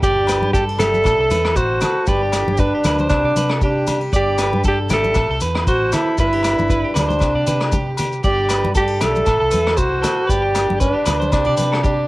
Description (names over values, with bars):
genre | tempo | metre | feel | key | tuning
highlife guitar band | 117 BPM | 4/4 | swing 55% on 16ths | G major | A4 = 441 Hz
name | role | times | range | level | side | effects
clear alto saxophone | melody | 0.0-12.1 s | D4 to A4 | -18 LUFS | right 1 dB | cassette tape
bright bansuri | second line | 0.0-12.1 s | G4 to E5 | -30 LUFS | left 2 dB | none
picked steel-string acoustic guitar | accompaniment | 0.0-12.1 s | G2 to G4 | -31 LUFS | left 4 dB | none
electric guitar at the edge of break-up | arpeggios | 0.0-12.1 s | G4 to D5 | -24 LUFS | right 2 dB | tape echo
hollow-body short-scale fingered electric bass | bass | 0.0-12.1 s | G1 to C3 | -23 LUFS | equal | none
vintage drum kit | drums | 0.0-12.0 s | hi-hat, kick drum, rim click | -23 LUFS | equal | none
maracas | percussion | 0.0-12.0 s | none | -32 LUFS | left 4 dB | none
agogo bells | percussion | 0.3-11.8 s | none | -29 LUFS | left 4 dB | none
congas | percussion | 0.4-11.7 s | none | -25 LUFS | left 1 dB | none
room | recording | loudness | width
light reverb, small room ambience | home recording on cassette | -15 LUFS | side -19 dB against mid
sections
0.0-12.1 A section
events
none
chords
0.0 G; 1.0 Am; 2.1 G; 3.1 Csus2; 4.1 G; 5.2 Am; 6.2 G; 7.2 Csus2; 8.2 G; 9.3 Am; 10.3 G; 11.3 Csus2